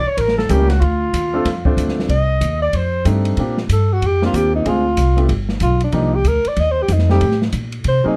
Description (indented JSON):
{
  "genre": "jazz, small-group swing and bop",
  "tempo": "188 BPM",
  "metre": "4/4",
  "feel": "swing 63% on 8ths",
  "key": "Bb major",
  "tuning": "A4 = 441 Hz",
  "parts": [
    { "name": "mellow alto saxophone", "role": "melody", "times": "0.0-8.2 s", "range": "D4 to Eb5", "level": "-22 LUFS", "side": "equal", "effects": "none" },
    { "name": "clear trumpet", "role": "second line", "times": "0.0-3.1 s", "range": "F4 to Eb5", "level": "-29 LUFS", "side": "equal", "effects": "none" },
    { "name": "upright bass", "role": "bass", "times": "0.0-8.1 s", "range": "G1 to C3", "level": "-20 LUFS", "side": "equal", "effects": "none" },
    { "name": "open jazz drum kit", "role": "drums", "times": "0.2-7.9 s", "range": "hi-hat, kick drum, ride cymbal, snare drum", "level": "-26 LUFS", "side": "equal", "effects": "none" },
    { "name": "warm concert grand piano", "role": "accompaniment", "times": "0.5-8.2 s", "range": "F3 to C5", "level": "-23 LUFS", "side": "equal", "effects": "none" }
  ],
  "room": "light reverb",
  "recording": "dark, warm production",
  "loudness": "-17 LUFS",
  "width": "mono",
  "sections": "0.0-3.4 A section; 3.4-8.2 B section",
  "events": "alto saxophone solo 3.4-8.2",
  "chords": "0.0 A7b9; 0.8 Dm7; 2.1 Cm; 2.7 F13; 3.4 Bb6; 4.7 Dm7b5; 5.3 G; 5.9 Cm11; 7.2 Gmadd9/A",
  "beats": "0.18 0.50 | 0.82 1.14 1.46 1.78 | 2.10 2.42 2.74 3.06 | 3.38 3.70 4.02 4.34 | 4.66 4.98 5.30 5.62 | 5.94 6.26 6.58 6.90 | 7.22 7.54 7.86"
}